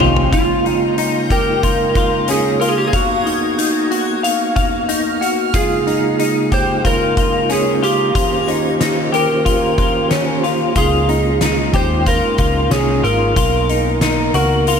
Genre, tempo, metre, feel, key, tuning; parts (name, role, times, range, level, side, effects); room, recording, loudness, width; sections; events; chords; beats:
dream pop; 92 BPM; 4/4; straight; Db lydian; A4 = 440 Hz
mellow tonewheel organ; sustained chords; 0.0-14.8 s; Db3 to C5; -21 LUFS; right 2 dB; chorus vibrato, fast rotary speaker, shimmer reverb
clean electric guitar; arpeggios; 0.0-14.8 s; Db4 to F5; -18 LUFS; left 5 dB; ensemble chorus, tape echo, shimmer reverb
vintage muted picked electric bass; bass; 0.0-0.3, 10.8-14.8 s; Ab1 to Eb2; -19 LUFS; equal
oversized low-tuned drum kit; drums; 0.0-14.8 s; hi-hat, kick drum, snare drum, toms; -21 LUFS; equal
electric slide guitar; melody; 0.3-14.8 s; F4 to C5; -19 LUFS; right 3 dB; tape echo, shimmer reverb
moderate huge ambient reverb, RT60 6.7 s; -13 LUFS; side -6 dB against mid
0.3-14.8 A section
drum fill 0.0-0.3
0.3 Db69; 2.9 Cbmaj7; 5.5 Db69; 8.2 Eb13; 10.8 Db69; 13.4 Cbmaj7
| 0.32 0.98 1.63 2.28 | 2.93 3.58 4.24 4.89 | 5.54 6.19 6.85 7.50 | 8.15 8.80 9.45 10.11 | 10.76 11.41 12.06 12.71 | 13.37 14.02 14.67